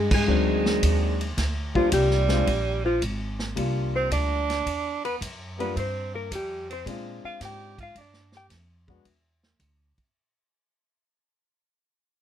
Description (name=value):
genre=jazz, small-group swing and bop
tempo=110 BPM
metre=4/4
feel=swing 69% on 8ths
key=unclear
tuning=A4 = 435 Hz
part: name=hollow-body jazz guitar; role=melody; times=0.0-8.5 s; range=Ab3 to G5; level=-28 LUFS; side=left 4 dB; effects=none
part: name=clear tenor saxophone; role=second line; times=0.0-8.5 s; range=F3 to G4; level=-29 LUFS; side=right 8 dB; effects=none
part: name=upright bass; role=bass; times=0.0-10.0 s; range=Ab1 to Bb2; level=-27 LUFS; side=right 1 dB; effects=none
part: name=vintage drum kit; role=drums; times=0.1-10.1 s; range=crash cymbal, hi-hat, kick drum, ride cymbal, snare drum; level=-31 LUFS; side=right 1 dB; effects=none
part: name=warm concert grand piano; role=accompaniment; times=0.3-9.0 s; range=Eb3 to Gb4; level=-29 LUFS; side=left 5 dB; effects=none
room=little or no reverb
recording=close, detailed microphones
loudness=-23 LUFS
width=side -10 dB against mid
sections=0.0-1.4 A section; 1.4-10.1 B section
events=band accent 0.0; fade-out 1.4-10.1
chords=0.3 D7b9; 1.4 Gm7; 2.5 Fmadd11; 3.6 C9sus4; 4.7 Esus2; 5.8 Fsus24; 6.9 Bb9; 8.0 Fm69; 9.1 Dsus2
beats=0.29 0.83 | 1.38 1.93 2.47 3.02 | 3.57 4.12 4.66 5.21 | 5.76 6.31 6.85 7.40 | 7.95 8.50 9.05 9.60